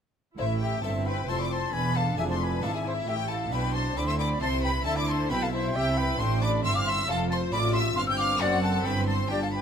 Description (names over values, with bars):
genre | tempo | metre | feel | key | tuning
classical, baroque-style concerto movement with solo episodes | 135 BPM | 3/4 | straight | A minor, C major from 5.8 s | A4 = 443 Hz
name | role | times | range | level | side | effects
silver concert flute | melody | 0.4-9.6 s | C5 to E6 | -32 LUFS | left 2 dB | none
warm chamber violin section | melody | 0.4-9.6 s | E5 to G6 | -32 LUFS | left 3 dB | none
rich studio violin section | second line | 0.4-9.6 s | E4 to G5 | -34 LUFS | left 4 dB | none
harpsichord | accompaniment | 0.4-9.6 s | E2 to C5 | -36 LUFS | equal | none
warm symphonic viola section | accompaniment | 0.4-9.6 s | C4 to F4 | -35 LUFS | equal | none
rich chamber cello section | bass | 0.4-9.6 s | E2 to D3 | -31 LUFS | right 2 dB | none
warm chamber double bass section | bass | 0.4-9.6 s | E1 to D2 | -32 LUFS | right 3 dB | none
room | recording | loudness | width
light reverb | close, detailed microphones | -24 LUFS | side -7 dB against mid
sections
0.4-9.6 A section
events
none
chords
0.4 Am; 1.7 E7; 3.1 Am; 4.4 Am/C; 5.8 C; 7.1 F; 8.4 D7/F#; 8.9 C/G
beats
| 0.39 0.84 1.28 | 1.73 2.18 2.63 | 3.08 3.52 3.97 | 4.41 4.86 5.30 | 5.75 6.20 6.64 | 7.08 7.53 7.97 | 8.41 8.86 9.30